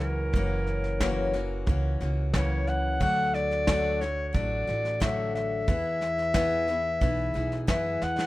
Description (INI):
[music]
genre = acoustic folk duo or small band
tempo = 90 BPM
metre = 4/4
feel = straight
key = E mixolydian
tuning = A4 = 440 Hz
[part]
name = bright clarinet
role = melody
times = 0.0-8.3 s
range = A#4 to F#5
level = -29 LUFS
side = left 1 dB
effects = none
[part]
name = picked steel-string acoustic guitar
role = accompaniment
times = 0.0-8.3 s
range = F#2 to G#4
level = -31 LUFS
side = left 2 dB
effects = none
[part]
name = upright bass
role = bass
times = 0.0-8.3 s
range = F#1 to F#2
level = -31 LUFS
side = right 1 dB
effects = none
[part]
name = soft brush drum kit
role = drums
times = 0.0-8.3 s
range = kick drum, snare drum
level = -29 LUFS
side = right 1 dB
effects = none
[sound]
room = light reverb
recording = minimal, uncompressed stereo recording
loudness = -25 LUFS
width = side -17 dB against mid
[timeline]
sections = 0.0-8.3 A section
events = drum fill 8.0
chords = 0.0 F#7; 3.0 D; 5.7 E